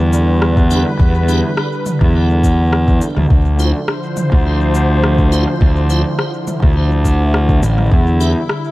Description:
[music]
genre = ambient dub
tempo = 104 BPM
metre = 4/4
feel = straight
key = D dorian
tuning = A4 = 441 Hz
[part]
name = warm analog pad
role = sustained chords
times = 0.0-8.7 s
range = D3 to C5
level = -20 LUFS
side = equal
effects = chorus
[part]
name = fuzz fingered electric bass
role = bass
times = 0.0-8.3 s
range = A1 to E2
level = -13 LUFS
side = equal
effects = overdrive
[part]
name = organic electronic drum kit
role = drums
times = 0.1-8.6 s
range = cabasa, rim click, toms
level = -23 LUFS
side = equal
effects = overdrive, dub echo
[part]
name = electronic kick drum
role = drums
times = 0.6-8.0 s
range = none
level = -14 LUFS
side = equal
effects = overdrive
[part]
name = tonewheel organ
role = stabs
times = 0.7-8.3 s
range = D4 to C5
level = -26 LUFS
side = right 1 dB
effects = chorus vibrato, fast rotary speaker, dub echo
[sound]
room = little or no reverb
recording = vinyl crackle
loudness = -11 LUFS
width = side -18 dB against mid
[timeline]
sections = 0.0-8.7 A section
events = none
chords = 0.0 Em7; 3.3 Dm9; 7.9 Em7

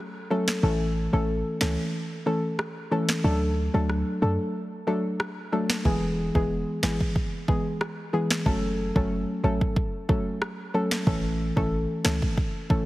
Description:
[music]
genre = dancehall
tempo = 92 BPM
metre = 4/4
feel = straight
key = unclear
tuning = A4 = 441 Hz
[part]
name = soft round pluck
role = accompaniment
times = 0.3-12.8 s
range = E3 to A4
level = -26 LUFS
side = left 1 dB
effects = chorus
[part]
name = afro-pop drum kit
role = drums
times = 0.5-12.9 s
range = kick drum, rim click, snare drum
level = -28 LUFS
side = equal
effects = none
[part]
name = clean 808-style bass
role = bass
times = 0.6-12.2 s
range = E1 to F#2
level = -28 LUFS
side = equal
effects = none
[sound]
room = light reverb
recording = heavily compressed radio sound, multiband compression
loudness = -24 LUFS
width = side -17 dB against mid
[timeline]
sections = 0.0-12.9 A section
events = break 0.0-5.9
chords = 0.0 F#m; 0.6 A; 3.2 D; 5.9 E; 8.5 F#m; 11.1 A

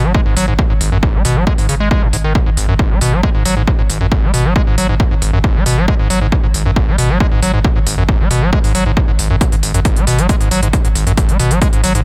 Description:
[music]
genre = driving peak-time techno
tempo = 136 BPM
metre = 4/4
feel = straight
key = G# minor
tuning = A4 = 440 Hz
[part]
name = overdriven acid bass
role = riff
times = 0.0-12.0 s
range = G#1 to G#3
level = -19 LUFS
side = equal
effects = distortion, sidechain pumping, dub echo
[part]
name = saturated sub bass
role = bass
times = 0.0-12.0 s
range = G#1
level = -20 LUFS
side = equal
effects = tube saturation, sidechain pumping, low-pass filter
[part]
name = electronic kick drum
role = drums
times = 0.1-11.7 s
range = none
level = -17 LUFS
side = equal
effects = none
[part]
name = electronic hi-hat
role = drums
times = 0.4-12.0 s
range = none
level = -23 LUFS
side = equal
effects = sidechain pumping on hats
[sound]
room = little or no reverb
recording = none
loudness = -14 LUFS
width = mono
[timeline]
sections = 0.0-12.0 A section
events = none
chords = none

